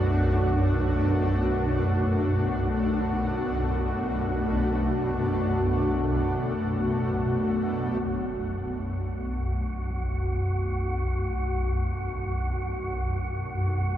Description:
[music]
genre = dark ambient drone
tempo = free time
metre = none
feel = none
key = B minor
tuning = A4 = 441 Hz
[part]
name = granular cloud pad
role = sustained chords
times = 0.0-14.0 s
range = B2 to F#4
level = -29 LUFS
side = equal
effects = built-in reverb
[part]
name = swarming drone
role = drone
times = 0.0-14.0 s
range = B1 to F#2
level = -27 LUFS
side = equal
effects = built-in reverb
[part]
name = wind-like tuned noise texture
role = texture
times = 0.0-14.0 s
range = F#4 to F#5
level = -32 LUFS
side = equal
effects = built-in reverb
[part]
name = impact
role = percussion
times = 8.0-10.1 s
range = none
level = -45 LUFS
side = equal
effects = none
[sound]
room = wet huge ambient reverb, RT60 7.4 s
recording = dark, warm production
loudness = -24 LUFS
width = side -11 dB against mid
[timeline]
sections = 0.0-8.0 A section; 8.0-14.0 B section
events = fade-in on ambient pad 8.0-14.0; filter sweep on synth drone 8.0-14.0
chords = 0.0 Bm

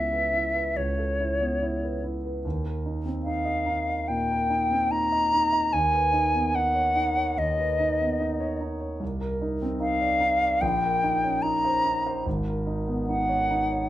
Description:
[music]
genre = classical, impressionist duo for flute and grand piano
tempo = 73 BPM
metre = 4/4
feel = rubato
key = unclear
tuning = A4 = 440 Hz
[part]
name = silver concert flute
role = melody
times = 0.0-13.9 s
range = C#5 to Bb5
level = -24 LUFS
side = left 1 dB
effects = none
[part]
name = dark concert grand piano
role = accompaniment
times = 0.0-13.9 s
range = Ab1 to Eb5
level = -28 LUFS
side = right 1 dB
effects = none
[sound]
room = light reverb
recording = minimal, uncompressed stereo recording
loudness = -23 LUFS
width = side -14 dB against mid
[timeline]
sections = 0.0-13.9 A section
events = none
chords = 0.0 Aadd9/C#; 2.4 Eb6; 5.7 Cbadd9/Eb; 9.0 Cm11; 10.6 Bbmadd9; 12.3 Abm11

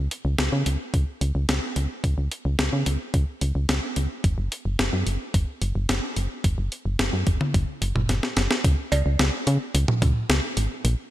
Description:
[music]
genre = synth-pop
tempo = 109 BPM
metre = 4/4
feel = straight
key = unclear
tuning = A4 = 440 Hz
[part]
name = solid FM bass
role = bass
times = 0.0-11.0 s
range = Gb1 to Db3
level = -23 LUFS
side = equal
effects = none
[part]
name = clean 12-bit digital drum machine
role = drums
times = 0.1-11.0 s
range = cowbell, hi-hat, kick drum, snare drum, toms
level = -24 LUFS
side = equal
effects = none
[sound]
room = light reverb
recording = none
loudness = -22 LUFS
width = side -14 dB against mid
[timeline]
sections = 0.0-8.6 A section; 8.6-11.1 B section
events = drum fill 8.1-8.6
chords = none

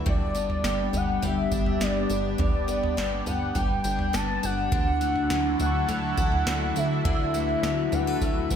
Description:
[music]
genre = dream pop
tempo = 103 BPM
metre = 4/4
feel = straight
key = G major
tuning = A4 = 440 Hz
[part]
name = phased analog pad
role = sustained chords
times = 0.0-8.6 s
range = D3 to B4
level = -31 LUFS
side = right 1 dB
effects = phaser, chorus
[part]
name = picked twelve-string acoustic guitar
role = arpeggios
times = 0.0-8.6 s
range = G2 to E4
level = -30 LUFS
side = left 5 dB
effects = wide subtle chorus, tape echo
[part]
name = plucky analog bass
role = bass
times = 0.0-8.6 s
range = G1 to D2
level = -31 LUFS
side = equal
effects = none
[part]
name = warm velvety synth lead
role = melody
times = 0.1-8.6 s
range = D5 to A5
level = -29 LUFS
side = equal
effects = chorus, tape echo
[part]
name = booming analog drum machine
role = drums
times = 0.1-8.6 s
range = kick drum, snare drum, tambourine, toms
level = -29 LUFS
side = right 1 dB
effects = none
[part]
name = worn celesta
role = texture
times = 5.7-8.0 s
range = C#6 to E6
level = -40 LUFS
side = right 6 dB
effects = tape echo
[sound]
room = moderate concert hall reverb, RT60 1.9 s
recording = none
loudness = -23 LUFS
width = side -8 dB against mid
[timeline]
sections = 0.0-8.6 A section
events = none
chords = 0.1 G; 4.7 Dadd9

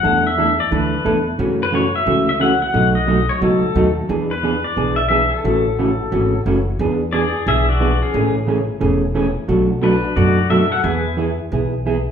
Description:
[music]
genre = country, western swing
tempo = 178 BPM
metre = 4/4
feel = swing 63% on 8ths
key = unclear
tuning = A4 = 441 Hz
[part]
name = pedal steel guitar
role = melody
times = 0.0-11.2 s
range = C#4 to G#5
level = -19 LUFS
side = left 3 dB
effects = none
[part]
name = hollow-body jazz guitar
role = accompaniment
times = 0.0-12.0 s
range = B2 to A4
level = -18 LUFS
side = right 2 dB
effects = none
[part]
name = upright bass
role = bass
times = 0.0-12.1 s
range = E1 to F#2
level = -22 LUFS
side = equal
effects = none
[sound]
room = wet large studio reverb, RT60 1.2 s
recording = band playing live in one room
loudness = -15 LUFS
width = side -8 dB against mid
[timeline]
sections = 0.0-6.8 A section; 6.8-12.1 B section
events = none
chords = 0.0 E7sus4; 1.4 F#m7; 2.7 B7; 4.1 E7; 5.4 A6; 6.8 E7; 8.1 Amaj7; 9.5 Bm7; 10.8 E

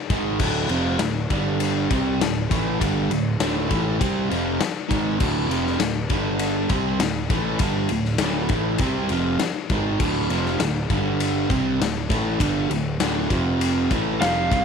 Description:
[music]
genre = classic rock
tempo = 100 BPM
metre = 4/4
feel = straight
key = D minor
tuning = A4 = 440 Hz
[part]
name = distorted electric guitar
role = riff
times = 0.1-14.6 s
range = D2 to C4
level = -23 LUFS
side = right 1 dB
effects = distortion
[part]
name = fuzz picked electric bass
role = bass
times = 0.1-14.6 s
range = D1 to C2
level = -27 LUFS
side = right 1 dB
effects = overdrive, transformer saturation
[part]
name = big rock drum kit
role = drums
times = 0.1-14.6 s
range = crash cymbal, kick drum, ride cymbal, snare drum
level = -25 LUFS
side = left 4 dB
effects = none
[part]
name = lead guitar through a small cranked amp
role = melody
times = 14.2-14.6 s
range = F5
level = -21 LUFS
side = right 2 dB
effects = overdrive, slapback echo
[sound]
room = small room ambience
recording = 1960s-style stereo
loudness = -20 LUFS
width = side -6 dB against mid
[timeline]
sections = 0.0-14.6 A section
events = none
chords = 0.0 Dm; 1.3 G5; 1.9 Dm; 6.1 G5; 6.7 Dm; 10.9 G5; 11.5 D5; 13.3 F5; 13.9 Fmaj9

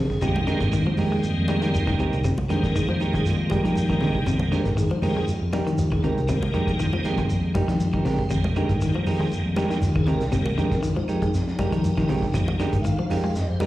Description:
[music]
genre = afrobeat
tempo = 119 BPM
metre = 4/4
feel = swing 53% on 16ths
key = F dorian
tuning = A4 = 441 Hz
[part]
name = tonewheel organ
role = accompaniment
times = 0.0-13.7 s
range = Eb3 to F5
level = -28 LUFS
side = equal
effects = slow rotary speaker, chorus vibrato, slapback echo
[part]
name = electric guitar at the edge of break-up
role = arpeggios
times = 0.0-13.7 s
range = C3 to Ab3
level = -28 LUFS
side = left 2 dB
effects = slapback echo
[part]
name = fingered electric bass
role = bass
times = 0.0-13.7 s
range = C2 to F3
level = -26 LUFS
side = equal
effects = none
[part]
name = crunchy breakbeat drum kit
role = drums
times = 0.1-13.7 s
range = hi-hat, kick drum, snare drum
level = -30 LUFS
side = equal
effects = none
[part]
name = clean electric guitar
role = stabs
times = 0.2-13.7 s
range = Ab3 to Bb4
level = -29 LUFS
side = right 4 dB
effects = slapback echo
[part]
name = claves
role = percussion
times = 0.2-13.7 s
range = none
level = -44 LUFS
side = right 2 dB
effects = none
[part]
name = congas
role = percussion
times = 0.2-13.7 s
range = none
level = -31 LUFS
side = equal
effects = slapback echo
[part]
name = shekere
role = percussion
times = 0.2-13.7 s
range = none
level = -30 LUFS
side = equal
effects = none
[sound]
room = moderate club reverb, RT60 0.6 s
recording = live gig heard through the venue's PA, recital hall reverb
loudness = -21 LUFS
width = side -15 dB against mid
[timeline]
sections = 0.0-13.7 A section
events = tonewheel organ solo 0.0-13.7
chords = 0.0 Fm11

